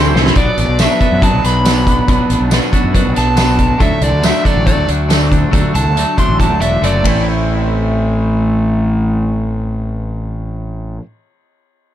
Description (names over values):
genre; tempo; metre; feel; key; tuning
indie rock; 139 BPM; 4/4; straight; A dorian; A4 = 440 Hz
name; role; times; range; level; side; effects
twelve-string electric guitar; riff; 0.0-11.0 s; A2 to C5; -17 LUFS; equal; double-tracked left and right
fuzz fingered electric bass; bass; 0.0-11.0 s; E1 to F#2; -16 LUFS; equal; overdrive
loose indie drum kit; drums; 0.2-7.1 s; hi-hat, kick drum, ride cymbal, snare drum, tambourine; -16 LUFS; equal; none
crunchy overdriven guitar; melody; 0.4-7.3 s; D5 to C6; -19 LUFS; equal; digital delay
room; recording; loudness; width
light reverb; dark, warm production; -11 LUFS; side -11 dB against mid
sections
0.4-7.3 A section; 7.3-10.7 B section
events
drum fill 0.1; overdriven electric guitar solo 0.4-7.3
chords
0.4 Bm; 3.8 D; 7.0 Am